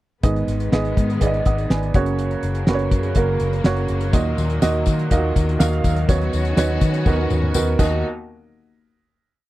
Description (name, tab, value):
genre	piano-driven pop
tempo	123 BPM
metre	4/4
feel	straight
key	unclear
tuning	A4 = 440 Hz
part	warm upright piano	accompaniment	0.2-8.1 s	Eb2 to Eb6	-22 LUFS	right 4 dB	none
part	rich studio string section	sustained chords	0.2-8.0 s	Db3 to F#4	-29 LUFS	left 5 dB	none
part	vintage muted fingered electric bass	bass	0.2-8.0 s	Gb1 to Eb3	-22 LUFS	left 1 dB	none
part	damped 70s drum kit	drums	0.2-7.9 s	crash cymbal, hi-hat, kick drum, snare drum, toms	-19 LUFS	left 1 dB	none
part	tambourine	percussion	4.1-8.0 s	none	-35 LUFS	left 20 dB	none
room	little or no reverb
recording	dry, close 1970s-style studio recording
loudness	-17 LUFS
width	side -16 dB against mid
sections	0.2-8.0 bridge; 8.0-9.5 final hit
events	drum fill 7.1-8.0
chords	0.2 Abm; 1.9 Gb; 4.1 Ebm; 6.1 Badd9/D#; 7.8 Ebm; 8.0 N.C.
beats	| 0.24 0.72 1.21 1.70 | 2.19 2.67 3.16 3.65 | 4.14 4.63 5.11 5.60 | 6.09 6.58 7.07 7.55 | 8.04